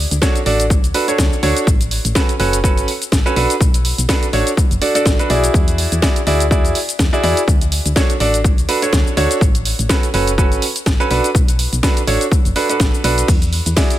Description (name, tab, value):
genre	piano house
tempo	124 BPM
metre	4/4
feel	swing 56% on 16ths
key	E mixolydian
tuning	A4 = 439 Hz
part	solid FM bass	bass	0.0-13.7 s	F#1 to E2	-19 LUFS	equal	sidechain pumping
part	house drum kit	drums	0.1-14.0 s	hi-hat, ride cymbal, shaker, snare drum	-21 LUFS	equal	overdrive
part	clear baby grand piano	riff	0.2-13.9 s	C#4 to D5	-18 LUFS	right 2 dB	sidechain pumping, ping-pong delay
part	electronic kick drum	drums	0.2-13.9 s	none	-15 LUFS	equal	overdrive
room	little or no reverb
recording	none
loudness	-13 LUFS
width	side -13 dB against mid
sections	0.0-14.0 A section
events	none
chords	0.0 Dmaj7; 1.7 A69; 3.4 Bm7; 5.5 E9; 7.5 Dmaj7; 9.4 A69; 11.1 Bm7; 13.3 E9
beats	0.22 0.70 1.19 | 1.67 2.15 2.64 3.12 | 3.61 4.09 4.57 5.06 | 5.54 6.03 6.51 6.99 | 7.48 7.96 8.45 8.93 | 9.41 9.90 10.38 10.86 | 11.35 11.83 12.32 12.80 | 13.28 13.77